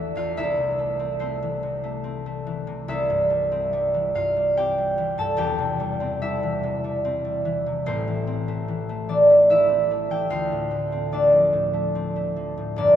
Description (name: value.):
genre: classical, solo harp piece.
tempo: 72 BPM.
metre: 3/4.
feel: rubato.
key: unclear.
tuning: A4 = 440 Hz.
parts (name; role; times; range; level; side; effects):
concert harp; solo; 0.0-13.0 s; E1 to A5; -20 LUFS; equal; none.
room: wet cathedral reverb, RT60 6.3 s.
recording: minimal, uncompressed stereo recording.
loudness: -20 LUFS.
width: side -10 dB against mid.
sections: 0.0-13.0 A section.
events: none.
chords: 0.3 Am/C; 2.9 C; 5.4 C/E; 7.8 Am; 10.3 Dm7.